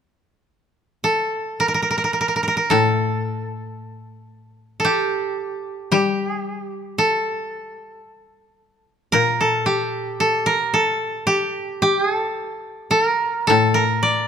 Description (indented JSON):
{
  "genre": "japanese traditional",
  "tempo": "55 BPM",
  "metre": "4/4",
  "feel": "rubato",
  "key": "unclear",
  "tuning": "A4 = 441 Hz",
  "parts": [
    { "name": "koto", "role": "melody", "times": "1.0-14.3 s", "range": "G4 to D5", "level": "-19 LUFS", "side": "right 1 dB", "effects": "none" },
    { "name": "koto", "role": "accompaniment", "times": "2.7-14.3 s", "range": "A2 to G3", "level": "-23 LUFS", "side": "left 5 dB", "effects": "none" }
  ],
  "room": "light reverb",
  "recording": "close, detailed microphones",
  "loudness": "-18 LUFS",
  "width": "side -7 dB against mid",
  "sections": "0.5-14.3 A section",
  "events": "none",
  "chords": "none",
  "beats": "| 0.48 1.62 2.72 3.80 | 4.88 5.94 7.01 8.09 | 9.14 10.22 11.32 12.41 | 13.51"
}